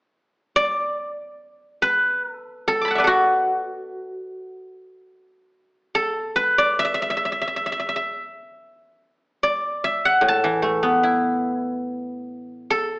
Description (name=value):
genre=chinese traditional, Chinese solo plucked strings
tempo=67-75 BPM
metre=2/4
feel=rubato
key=A zhi mode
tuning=A4 = 440 Hz
part: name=guzheng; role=solo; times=0.6-13.0 s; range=A2 to D6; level=-20 LUFS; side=equal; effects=none
room=moderate recital hall reverb, RT60 1.4 s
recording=AM radio sound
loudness=-19 LUFS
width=side -24 dB against mid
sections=0.1-1.8 A section; 1.8-13.0 B section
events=none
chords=none